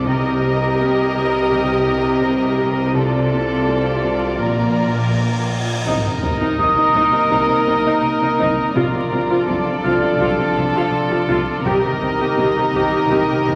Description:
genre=cinematic, suspense film score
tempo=83 BPM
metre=4/4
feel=straight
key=C dorian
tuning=A4 = 440 Hz
part: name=warm symphonic violin section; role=melody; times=0.0-13.6 s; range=D5 to Eb5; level=-28 LUFS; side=equal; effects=none
part: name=warm chamber violin section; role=second line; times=0.0-13.6 s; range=A4 to Bb4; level=-25 LUFS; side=equal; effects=none
part: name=dark symphonic viola section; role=accompaniment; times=0.0-13.5 s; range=Eb4 to G4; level=-24 LUFS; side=equal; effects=none
part: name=dark symphonic double bass section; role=bass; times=0.0-13.5 s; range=Bb1 to C2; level=-28 LUFS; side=equal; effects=none
part: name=warm studio cello section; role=bass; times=0.0-13.6 s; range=Bb2 to C3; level=-26 LUFS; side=equal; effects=none
part: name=vibraphone with medium mallets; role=texture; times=0.0-13.6 s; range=D6 to F6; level=-24 LUFS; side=equal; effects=none
part: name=dark symphonic cello section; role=riff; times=0.1-13.6 s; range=Bb2 to C4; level=-30 LUFS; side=equal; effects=none
part: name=cymbal swell and sub drop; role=sound effects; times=4.4-8.8 s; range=none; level=-30 LUFS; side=equal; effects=none
part: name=mellow French horn section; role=sustained chords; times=5.9-13.6 s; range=Eb3 to Eb4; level=-26 LUFS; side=equal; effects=none
room=wet scoring stage reverb, RT60 1.9 s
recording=vinyl crackle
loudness=-18 LUFS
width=mono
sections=0.0-5.9 A section; 5.9-13.6 A section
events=cymbal swell 4.4-5.9; impact 5.9-8.8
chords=0.1 Cm7; 3.0 Dm7/C; 4.4 Bb; 5.9 Cm7; 8.8 Dm7/C; 11.7 Cm7

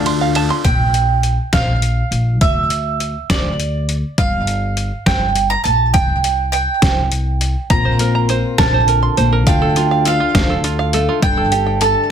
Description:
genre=indie folk with a building arrangement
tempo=68 BPM (dotted quarters)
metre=6/8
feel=straight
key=unclear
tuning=A4 = 442 Hz
part: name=bowl-back mandolin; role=melody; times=0.0-12.1 s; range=D5 to Bb5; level=-19 LUFS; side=right 5 dB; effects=digital delay
part: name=picked plugged-in twelve-string acoustic guitar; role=accompaniment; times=0.0-0.7 s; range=D3 to A4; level=-19 LUFS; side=left 14 dB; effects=none
part: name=warm baby grand piano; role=accompaniment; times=0.0-0.7 s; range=D2 to D5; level=-30 LUFS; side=right 3 dB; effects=none
part: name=open-back banjo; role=arpeggios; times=0.0-0.7, 7.7-12.1 s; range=F4 to C6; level=-21 LUFS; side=right 8 dB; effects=none
part: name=upright bass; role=bass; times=0.0-11.9 s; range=G1 to D2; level=-18 LUFS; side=equal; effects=none
part: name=trip hop sampler-style drum kit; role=drums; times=0.1-11.9 s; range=hi-hat, kick drum, ride cymbal, snare drum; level=-18 LUFS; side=left 1 dB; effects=overdrive
part: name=group handclap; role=percussion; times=0.5-0.6 s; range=none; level=-35 LUFS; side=left 8 dB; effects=none
part: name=fingerpicked steel-string acoustic guitar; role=accompaniment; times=7.7-12.1 s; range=D2 to A4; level=-20 LUFS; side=left 6 dB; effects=none
room=light reverb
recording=dense, heavily limited modern master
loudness=-13 LUFS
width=side -8 dB against mid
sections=0.6-12.1 A section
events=none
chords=0.0 Dm; 0.6 Bb5; 2.4 Dsus2; 4.2 Gm7; 5.9 C5; 7.7 Bbadd9; 9.5 Dm; 11.2 Gsus2

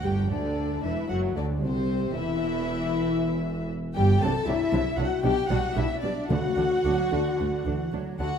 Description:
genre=quick classical-period movement for symphony orchestra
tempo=114 BPM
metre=4/4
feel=rubato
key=unclear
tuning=A4 = 439 Hz
part: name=warm chamber violin section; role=melody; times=0.0-8.4 s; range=C5 to A5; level=-34 LUFS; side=left 3 dB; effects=none
part: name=warm chamber violin section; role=second line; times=0.0-8.4 s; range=C4 to A4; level=-33 LUFS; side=left 3 dB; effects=none
part: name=warm chamber viola section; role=accompaniment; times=0.0-8.3 s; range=C3 to D4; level=-34 LUFS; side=right 3 dB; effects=none
part: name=dark French horn section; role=sustained chords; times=0.0-8.3 s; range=C4 to A4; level=-29 LUFS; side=left 4 dB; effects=none
part: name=dark chamber cello section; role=bass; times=0.0-8.3 s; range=C2 to F#3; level=-30 LUFS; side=right 2 dB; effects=none
part: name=warm chamber double bass section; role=bass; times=0.0-8.3 s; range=E1 to D2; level=-31 LUFS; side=right 3 dB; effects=none
part: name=timpani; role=percussion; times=6.3-7.1 s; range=D3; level=-33 LUFS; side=equal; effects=none
room=moderate scoring stage reverb, RT60 1.6 s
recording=none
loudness=-24 LUFS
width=side -7 dB against mid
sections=0.0-8.4 A section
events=none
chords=0.0 G5; 1.1 D7/F#; 2.2 N.C.; 3.2 Em; 4.2 D7/C; 5.2 G/B; 6.3 D

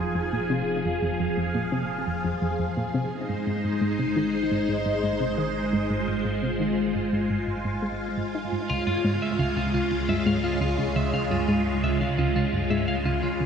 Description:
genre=ambient, sequencer-driven space music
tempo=86 BPM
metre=4/4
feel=straight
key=unclear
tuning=A4 = 440 Hz
part: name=phased string machine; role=sustained chords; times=0.0-13.5 s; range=Db3 to C5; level=-26 LUFS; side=equal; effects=ensemble chorus, phaser, shimmer reverb
part: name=analog pluck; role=riff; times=0.0-13.5 s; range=Db2 to Eb4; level=-28 LUFS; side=equal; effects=chorus, tape echo
part: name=round analog bass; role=bass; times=0.0-13.5 s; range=F1 to Db2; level=-36 LUFS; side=equal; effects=none
part: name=clean electric guitar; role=arpeggios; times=8.7-13.4 s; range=F4 to F5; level=-31 LUFS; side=equal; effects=auto-pan, tape echo, shimmer reverb
room=wet lush hall reverb, RT60 2.7 s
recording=dark, warm production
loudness=-23 LUFS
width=side -7 dB against mid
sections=0.0-13.5 A section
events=fade-in on analog synth bass 0.0-13.5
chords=0.0 Fm7; 3.1 Ab; 8.7 Db

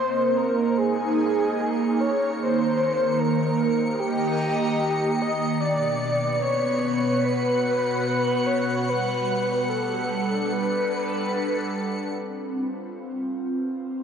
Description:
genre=ambient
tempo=free time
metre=none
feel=none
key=unclear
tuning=A4 = 440 Hz
part: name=breathy flute-like synth lead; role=melody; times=0.0-11.7 s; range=G4 to Eb5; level=-25 LUFS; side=left 1 dB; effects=ensemble chorus, tape echo
part: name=airy breathy pad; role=sustained chords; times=0.0-14.0 s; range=B2 to Bb5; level=-24 LUFS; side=right 1 dB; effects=chorus, phaser
part: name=clear studio violin section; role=texture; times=0.0-12.1 s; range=Db7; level=-36 LUFS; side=left 2 dB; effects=none
room=wet cathedral reverb, RT60 5.0 s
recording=dark, warm production, nothing above 10.8 kHz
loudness=-22 LUFS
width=side -7 dB against mid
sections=0.0-12.1 A section; 12.1-14.0 B section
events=fade-in on violin section 0.0-12.1; filter sweep on analog synth pad 12.1-14.0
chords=0.0 Absus2; 2.4 Eb; 5.6 Bm; 8.9 Gmaj7; 12.1 Fm

